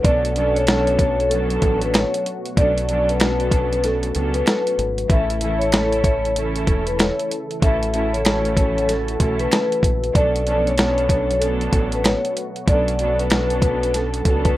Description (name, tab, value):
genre	hip hop, boom-bap hip-hop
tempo	95 BPM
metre	4/4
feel	swing 62% on 16ths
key	unclear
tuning	A4 = 440 Hz
part	vibraphone with medium hard mallets	melody	0.0-14.6 s	A4 to E5	-21 LUFS	left 1 dB	high-pass filter, low-pass filter, tape echo
part	dark studio string section	accompaniment	0.0-14.6 s	E3 to A4	-25 LUFS	right 1 dB	cassette tape, high-pass filter, low-pass filter
part	warm analog pad	sustained chords	0.0-14.6 s	B2 to A4	-30 LUFS	left 1 dB	chorus, high-pass filter, low-pass filter
part	dusty soul sampler-style drum kit	drums	0.0-14.6 s	hi-hat, kick drum, snare drum	-20 LUFS	equal	none
part	deep dub fingered electric bass	bass	0.1-14.5 s	E1 to C#2	-25 LUFS	equal	none
part	finger snaps	percussion	0.7-13.5 s	none	-30 LUFS	equal	none
room	little or no reverb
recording	rough home demo mix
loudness	-17 LUFS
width	side -15 dB against mid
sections	0.0-14.6 A section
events	kick muted 3.8-5.1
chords	0.0 Bm7; 5.1 A; 10.2 Bm7